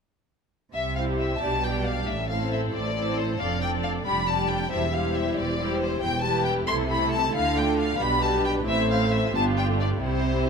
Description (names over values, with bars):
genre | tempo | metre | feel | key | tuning
quick classical-period movement for string orchestra | 91 BPM (dotted quarters) | 6/8 | straight | C major | A4 = 440 Hz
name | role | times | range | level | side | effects
rich chamber violin section | melody | 0.7-10.5 s | C5 to C6 | -27 LUFS | left 4 dB | none
rich studio cello section | bass | 0.7-10.5 s | E2 to D3 | -30 LUFS | right 3 dB | none
rich studio double bass section | bass | 0.7-10.5 s | E1 to D2 | -30 LUFS | right 3 dB | none
warm studio violin section | second line | 1.0-10.5 s | E4 to D5 | -30 LUFS | left 1 dB | none
rich studio viola section | accompaniment | 1.0-10.5 s | G3 to E4 | -30 LUFS | equal | none
room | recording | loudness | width
moderate scoring stage reverb, RT60 1.7 s | none | -22 LUFS | side -6 dB against mid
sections
0.7-10.5 A section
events
none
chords
0.7 C; 1.4 G/B; 2.1 Am; 3.4 Dm7/F; 4.1 G5/F; 4.7 C/E; 6.7 Am/C; 7.3 Dm; 8.0 G/B; 8.7 Am; 9.3 G7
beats
| 0.74 1.41 | 2.07 2.73 | 3.40 4.06 | 4.72 5.37 | 6.03 6.68 | 7.34 8.00 | 8.66 9.34 | 10.03